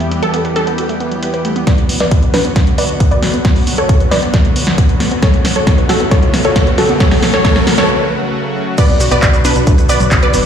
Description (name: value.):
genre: uplifting trance.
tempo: 135 BPM.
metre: 4/4.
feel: straight.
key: B minor.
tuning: A4 = 440 Hz.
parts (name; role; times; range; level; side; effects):
lush unison pad; sustained chords; 0.0-10.4 s; C#3 to G4; -19 LUFS; left 1 dB; chorus, sidechain pumping.
wide unison pluck; arpeggios; 0.0-10.4 s; F#3 to B4; -22 LUFS; right 2 dB; sidechain pumping, tape echo.
solid FM bass; bass; 0.0-1.6, 8.9-10.4 s; F#1 to E2; -19 LUFS; equal; sidechain pumping.
punchy analog drum machine; drums; 0.0-10.4 s; crash cymbal, handclaps, hi-hat, shaker, snare drum; -18 LUFS; equal; low-pass filter on hats, low-pass filter on snare, low-pass filter on cymbals, low-pass filter on perc.
wide unison pluck; melody; 0.2-10.5 s; D4 to D5; -17 LUFS; equal; sidechain pumping, dub echo.
electronic kick drum; drums; 1.7-10.2 s; none; -12 LUFS; equal; overdrive.
riser; sound effects; 3.7-7.9 s; none; -24 LUFS; right 1 dB; none.
room: moderate digital room reverb, RT60 1.2 s.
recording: played on a big sound system in a bare room, large studio reverb.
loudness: -10 LUFS.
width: side -8 dB against mid.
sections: 0.0-1.7 A section; 1.7-8.8 B section; 8.8-10.5 C section.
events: build-up 1.7-8.8; drum fill 1.7-7.9; filter sweep on synth pluck 1.7-8.8; filter sweep on synth arpeggio sound 1.7-8.8; riser 3.7-7.9; break 7.9-8.8; drop 8.8-10.5.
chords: 0.0 Em; 1.7 Bm; 5.2 F#m; 8.8 Bm.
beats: 0.34 0.78 1.23 | 1.67 2.12 2.56 3.00 | 3.45 3.89 4.34 4.78 | 5.23 5.67 6.12 6.56 | 7.00 7.45 7.89 8.34 | 8.78 9.23 9.67 10.12.